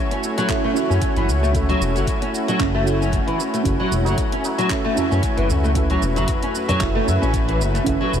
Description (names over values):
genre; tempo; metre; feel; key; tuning
organic downtempo; 114 BPM; 4/4; swing 56% on 16ths; F# minor; A4 = 442 Hz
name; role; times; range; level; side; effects
deep mellow chord stab; accompaniment; 0.0-8.2 s; C#4 to E5; -26 LUFS; right 5 dB; chorus, phaser, sidechain pumping, ping-pong delay
warm analog pad; sustained chords; 0.0-8.2 s; A3 to C#5; -26 LUFS; left 1 dB; chorus, sidechain pumping
nylon-string guitar; arpeggios; 0.1-8.1 s; E3 to C#4; -24 LUFS; left 1 dB; ensemble chorus, ping-pong delay
deep house drum kit; drums; 0.1-8.2 s; handclaps, hi-hat, shaker; -32 LUFS; right 2 dB; overdrive
electronic kick drum; drums; 0.5-8.0 s; none; -25 LUFS; equal; overdrive
smooth gliding synth bass; bass; 0.9-8.2 s; E1 to F#2; -21 LUFS; equal; sidechain pumping
tabla; percussion; 4.0-7.7 s; none; -31 LUFS; right 1 dB; none
room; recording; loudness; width
moderate huge ambient reverb, RT60 8.7 s; dreamy mix soaked in reverb; -17 LUFS; side -8 dB against mid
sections
0.0-8.2 A section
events
none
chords
0.0 F#m7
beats
0.49 1.02 | 1.55 2.07 2.60 3.12 | 3.65 4.18 4.70 5.23 | 5.76 6.28 6.81 7.34 | 7.86